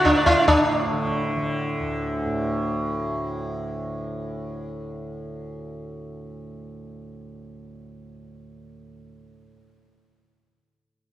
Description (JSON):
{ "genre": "indian classical, Hindustani", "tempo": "143 BPM", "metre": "5/4", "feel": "straight", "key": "unclear", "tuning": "A4 = 441 Hz", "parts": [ { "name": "sitar", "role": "melody", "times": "0.0-3.6 s", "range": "D4 to D5", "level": "-23 LUFS", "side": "equal", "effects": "none" }, { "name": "tanpura", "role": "drone", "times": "0.0-9.4 s", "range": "D2 to D3", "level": "-29 LUFS", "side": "right 1 dB", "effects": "none" }, { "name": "tabla", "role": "percussion", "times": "0.1-0.6 s", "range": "none", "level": "-24 LUFS", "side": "left 2 dB", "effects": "none" } ], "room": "wet concert hall reverb, RT60 2.2 s", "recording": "worn, warbling old tape, cassette tape, warbly pitch drift", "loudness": "-22 LUFS", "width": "side -13 dB against mid", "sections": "0.5-2.6 A section", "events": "none", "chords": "none" }